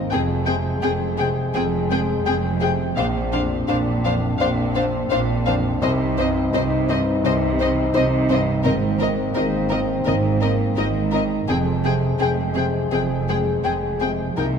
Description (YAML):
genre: cinematic, emotional film score for orchestra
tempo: 84 BPM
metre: 4/4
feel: rubato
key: unclear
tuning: A4 = 441 Hz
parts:
  - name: warm grand piano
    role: accompaniment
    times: 0.0-14.6 s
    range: Bb1 to G5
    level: -25 LUFS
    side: left 1 dB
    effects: none
  - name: warm French horn section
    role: sustained chords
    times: 0.0-14.6 s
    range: Ab3 to Ab4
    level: -26 LUFS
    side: left 4 dB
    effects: none
  - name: rich studio cello section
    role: bass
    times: 0.0-14.6 s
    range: F2 to C3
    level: -26 LUFS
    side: right 5 dB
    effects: none
  - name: rich studio double bass section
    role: bass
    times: 0.0-14.6 s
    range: F1 to C2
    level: -26 LUFS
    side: right 4 dB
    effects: none
  - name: dark chamber violin section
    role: melody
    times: 0.1-14.5 s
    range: Eb5 to G5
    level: -28 LUFS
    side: left 5 dB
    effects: none
  - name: warm symphonic violin section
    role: second line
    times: 0.1-14.5 s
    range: Ab4 to C5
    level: -28 LUFS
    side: left 4 dB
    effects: none
  - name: dark symphonic viola section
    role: accompaniment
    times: 0.1-14.5 s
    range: C4 to Eb4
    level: -30 LUFS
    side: right 3 dB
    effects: none
room: wet concert hall reverb, RT60 2.3 s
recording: dark, warm production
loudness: -18 LUFS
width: side -6 dB against mid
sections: 0.0-14.6 A section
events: none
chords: 0.1 Fmadd9; 3.0 Bbadd9; 5.8 Cm; 8.6 Abadd9; 11.5 Fmadd9